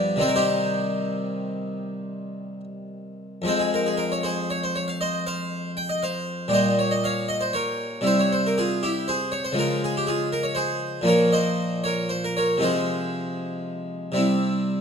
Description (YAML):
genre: classical, baroque-style suite movement for harpsichord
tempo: 71-81 BPM (dotted quarters)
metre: 12/8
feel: rubato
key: C minor, F minor from 3.5 s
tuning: A4 = 440 Hz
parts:
  - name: harpsichord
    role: solo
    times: 0.0-14.8 s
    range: F2 to G5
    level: -22 LUFS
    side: equal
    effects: none
room: moderate recital hall reverb, RT60 1.4 s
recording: close, detailed microphones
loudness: -22 LUFS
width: side -6 dB against mid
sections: 0.0-3.5 A section; 3.5-14.8 A section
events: none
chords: 0.2 Cm; 3.5 Fm; 6.5 Gdim/Bb; 8.1 C; 9.6 Db; 11.1 Bb5; 12.6 Fm/C; 14.2 C